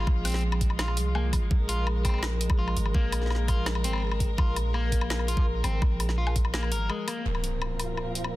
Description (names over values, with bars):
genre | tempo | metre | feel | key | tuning
half-time drum and bass | 167 BPM | 4/4 | half-time | unclear | A4 = 440 Hz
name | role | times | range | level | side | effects
warm chamber string section | sustained chords | 0.0-8.4 s | Bb2 to Bb4 | -34 LUFS | right 1 dB | sidechain pumping
electric guitar at the edge of break-up | arpeggios | 0.0-7.2 s | Ab3 to Bb4 | -35 LUFS | left 2 dB | digital delay
long sustained 808-style bass | bass | 0.0-6.9 s | Ab1 to C2 | -28 LUFS | equal | none
drum and bass drum kit | drums | 0.0-8.3 s | hi-hat, snare drum, woodblock | -33 LUFS | left 2 dB | overdrive
electronic kick drum | drums | 0.1-6.4 s | none | -26 LUFS | equal | overdrive
impact | sound effects | 7.3-8.4 s | none | -32 LUFS | equal | none
flickering grainy texture | texture | 7.6-8.4 s | F4 to F5 | -38 LUFS | right 2 dB | built-in reverb
room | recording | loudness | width
digital ambience | dense, heavily limited modern master | -24 LUFS | side -17 dB against mid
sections
0.0-7.3 A section; 7.3-8.4 B section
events
drop 0.0-7.3; break 6.9-7.3; impact 7.3-8.4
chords
0.0 Bb5